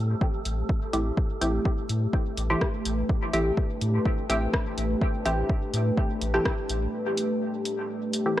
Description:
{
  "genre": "dub techno",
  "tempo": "125 BPM",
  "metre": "4/4",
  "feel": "straight",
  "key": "A minor",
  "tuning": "A4 = 441 Hz",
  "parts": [
    { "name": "dark analog pad", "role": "sustained chords", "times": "0.0-8.4 s", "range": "A3 to C5", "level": "-31 LUFS", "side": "equal", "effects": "chorus, sidechain pumping" },
    { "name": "warm sub bass", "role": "bass", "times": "0.0-6.9 s", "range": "A1 to A2", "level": "-27 LUFS", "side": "equal", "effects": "sidechain pumping" },
    { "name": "wind-like tuned noise texture", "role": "texture", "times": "0.0-8.4 s", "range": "A3 to A4", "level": "-38 LUFS", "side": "left 3 dB", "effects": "built-in reverb, sidechain pumping" },
    { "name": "electronic kick drum", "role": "drums", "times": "0.2-6.6 s", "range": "none", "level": "-26 LUFS", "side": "equal", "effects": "none" },
    { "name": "punchy analog drum machine", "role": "drums", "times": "0.5-8.4 s", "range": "hi-hat, rim click", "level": "-32 LUFS", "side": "equal", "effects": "none" },
    { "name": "filtered dub chord stab", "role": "stabs", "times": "0.9-8.4 s", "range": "E3 to G4", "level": "-30 LUFS", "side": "equal", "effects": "chorus, phaser, sidechain pumping, dub echo" }
  ],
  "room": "light reverb",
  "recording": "dry, gritty hardware recording, cassette tape",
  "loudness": "-24 LUFS",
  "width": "side -13 dB against mid",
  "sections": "0.0-8.4 A section",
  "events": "none",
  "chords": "0.0 Am7",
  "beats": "0.21 0.69 | 1.18 1.66 2.13 2.62 | 3.10 3.58 4.05 4.54 | 5.01 5.50 5.97 6.46 | 6.93 7.42 7.89 8.38"
}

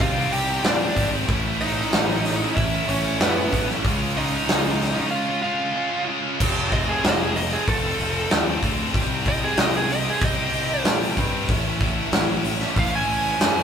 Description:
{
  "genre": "quiet-loud alternative rock",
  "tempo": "94 BPM",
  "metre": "4/4",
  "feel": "straight",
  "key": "unclear",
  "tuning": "A4 = 440 Hz",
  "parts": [
    { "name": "high-gain lead guitar", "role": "melody", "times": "0.0-13.6 s", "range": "B3 to Ab5", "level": "-25 LUFS", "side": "right 2 dB", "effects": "distortion" },
    { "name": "high-gain distorted guitar", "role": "riff", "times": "0.0-13.6 s", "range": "A2 to G4", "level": "-29 LUFS", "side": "right 9 dB", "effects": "distortion" },
    { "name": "overdriven electric guitar", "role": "riff", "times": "0.0-6.4 s", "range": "A2 to G4", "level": "-30 LUFS", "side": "right 2 dB", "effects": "none" },
    { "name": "scooped high-gain guitar", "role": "riff", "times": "0.0-13.6 s", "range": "A2 to A4", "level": "-27 LUFS", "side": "left 8 dB", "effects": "distortion" },
    { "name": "fuzz fingered electric bass", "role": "bass", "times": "0.0-13.6 s", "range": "F1 to Bb2", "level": "-29 LUFS", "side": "equal", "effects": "overdrive" },
    { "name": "big rock drum kit", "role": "drums", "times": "0.0-13.6 s", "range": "crash cymbal, hi-hat, kick drum, snare drum", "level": "-23 LUFS", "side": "equal", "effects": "none" }
  ],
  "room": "light reverb",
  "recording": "band playing live in one room",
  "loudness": "-19 LUFS",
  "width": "side -7 dB against mid",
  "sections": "0.0-6.4 A section; 6.4-13.6 B section",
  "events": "break 5.1-6.4; lead electric guitar solo 6.4-13.6",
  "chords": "0.0 Cm; 1.3 A; 3.8 Db; 6.4 F; 8.9 Cm; 11.5 A",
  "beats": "0.00 0.64 | 1.28 1.92 2.56 3.20 | 3.84 4.48 5.12 5.76 | 6.40 7.04 7.67 8.31 | 8.95 9.59 10.22 10.86 | 11.49 12.13 12.76 13.40"
}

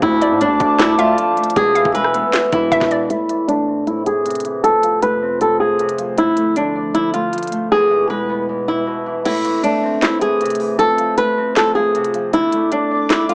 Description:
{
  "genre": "hip hop, trap",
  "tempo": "156 BPM",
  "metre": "4/4",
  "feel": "half-time",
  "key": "A harmonic minor",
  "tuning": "A4 = 440 Hz",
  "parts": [
    { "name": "flamenco guitar", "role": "melody", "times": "0.0-13.3 s", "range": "D4 to B4", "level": "-18 LUFS", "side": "equal", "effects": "low-pass filter, cassette tape" },
    { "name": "Celtic harp", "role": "accompaniment", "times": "0.0-13.3 s", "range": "E2 to D5", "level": "-26 LUFS", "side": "equal", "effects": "low-pass filter, cassette tape" },
    { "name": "dark analog pad", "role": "sustained chords", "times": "0.0-13.3 s", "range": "D2 to E6", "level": "-26 LUFS", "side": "equal", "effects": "lush chorus, low-pass filter, cassette tape" },
    { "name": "distorted 808-style bass", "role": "bass", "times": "0.0-3.1 s", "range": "E1 to A2", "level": "-26 LUFS", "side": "equal", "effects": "distortion" },
    { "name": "trap drum kit", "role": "drums", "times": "0.0-13.3 s", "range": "crash cymbal, handclaps, hi-hat, kick drum, rim click, snare drum", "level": "-26 LUFS", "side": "equal", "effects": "cassette tape" },
    { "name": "hollow square pluck", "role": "second line", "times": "0.2-3.1 s", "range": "D5 to F5", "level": "-24 LUFS", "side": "equal", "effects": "chorus, cassette tape, analog delay" }
  ],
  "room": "light reverb, digital ambience",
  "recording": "home recording on cassette, small speaker sound",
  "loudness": "-17 LUFS",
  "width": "mono",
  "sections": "0.0-3.1 A section; 3.1-9.3 B section; 9.3-13.3 C section",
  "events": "filter sweep 3.1-9.3; kick muted 9.3-13.3",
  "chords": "0.0 Dm; 1.6 E; 3.1 Am; 4.6 F; 6.2 Dm; 7.7 E; 9.3 Am; 10.8 F; 12.3 D5",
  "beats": "| 0.02 0.41 0.79 1.18 | 1.56 1.95 2.33 2.72 | 3.10 3.49 3.87 4.25 | 4.64 5.02 5.41 5.79 | 6.18 6.56 6.95 7.33 | 7.72 8.10 8.49 8.87 | 9.26 9.64 10.02 10.41 | 10.79 11.18 11.56 11.95 | 12.33 12.72 13.10"
}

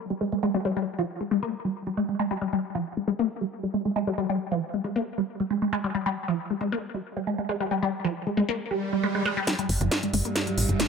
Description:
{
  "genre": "driving peak-time techno",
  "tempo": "136 BPM",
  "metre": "4/4",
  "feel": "straight",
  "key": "G phrygian",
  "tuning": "A4 = 440 Hz",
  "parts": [
    { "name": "resonant blip pluck", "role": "riff", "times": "0.1-10.9 s", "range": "F3 to Bb3", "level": "-26 LUFS", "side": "equal", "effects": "phaser, tube saturation, lush chorus, dub echo" },
    { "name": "swell and riser", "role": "sound effects", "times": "8.7-10.9 s", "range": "none", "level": "-33 LUFS", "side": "right 1 dB", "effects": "none" },
    { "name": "metallic inharmonic drone", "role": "drone", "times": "9.6-10.9 s", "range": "G2 to G3", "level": "-31 LUFS", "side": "right 2 dB", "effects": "chorus, built-in reverb" },
    { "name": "techno drum kit", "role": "drums", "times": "9.5-10.9 s", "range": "hi-hat, snare drum", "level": "-26 LUFS", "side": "equal", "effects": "overdrive, high-pass filter on snare, high-pass filter on hats" },
    { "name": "tight sequencer bass", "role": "bass", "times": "9.7-10.9 s", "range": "G1 to Bb1", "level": "-26 LUFS", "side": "equal", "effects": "none" }
  ],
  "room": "moderate spring reverb, RT60 1.9 s",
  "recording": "echo-heavy mix",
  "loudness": "-25 LUFS",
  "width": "side -5 dB against mid",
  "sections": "0.0-9.5 A section; 9.5-10.9 B section",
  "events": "filter sweep on synth arpeggio sound 0.0-9.5, 9.5-10.9; swell 8.7-9.5; build-up 9.5-10.9; drum fill 9.5-10.9",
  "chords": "0.0 N.C.; 9.5 Gm",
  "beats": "0.21 | 0.65 1.09 1.53 1.97 | 2.42 2.86 3.30 3.74 | 4.18 4.62 5.06 5.50 | 5.95 6.39 6.83 7.27 | 7.71 8.15 8.59 9.03 | 9.47 9.91 10.36 10.80"
}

